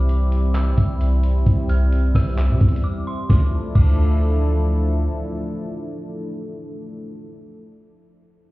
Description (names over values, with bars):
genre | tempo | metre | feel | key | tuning
hip hop, atmospheric cloud-rap | 131 BPM | 4/4 | half-time | D minor | A4 = 440 Hz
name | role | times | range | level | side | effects
dark detuned synth bell | melody | 0.0-4.6 s | C6 to F6 | -36 LUFS | equal | chorus, digital delay
dark analog pad | sustained chords | 0.0-7.3 s | F3 to A4 | -27 LUFS | left 1 dB | chorus, sidechain pumping
long sustained 808-style bass | bass | 0.0-5.1 s | C2 to C3 | -17 LUFS | equal | none
lo-fi sampler-style drum kit | drums | 0.1-3.9 s | crash cymbal, handclaps, hi-hat, kick drum, rim click, snare drum | -19 LUFS | equal | none
room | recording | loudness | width
digital ambience | heard muffled through a wall, stone room reverb, EQ | -17 LUFS | side -19 dB against mid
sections
0.0-3.3 A section; 3.3-7.0 B section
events
break 2.8-3.3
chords
0.0 C; 3.3 Dmadd9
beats
0.09 0.55 1.00 | 1.46 1.92 2.38 2.84 | 3.29 3.75 4.21 4.67 | 5.13 5.58 6.04 6.50